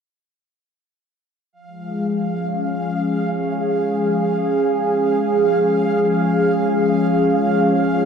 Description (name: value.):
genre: ambient, sequencer-driven space music.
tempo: free time.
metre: none.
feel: none.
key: Db major.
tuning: A4 = 440 Hz.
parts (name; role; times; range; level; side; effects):
lush unison pad; sustained chords; 1.5-8.1 s; F3 to Db5; -17 LUFS; equal; chorus.
bubbling stepped-filter texture; texture; 1.5-8.1 s; F5; -26 LUFS; right 4 dB; chorus, built-in reverb, shimmer reverb.
room: wet cathedral reverb, RT60 5.2 s.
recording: in a vast, echoing space.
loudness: -16 LUFS.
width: side -6 dB against mid.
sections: 1.5-8.1 A section.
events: filter sweep on analog synth pad 1.5-8.1.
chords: 1.5 Db.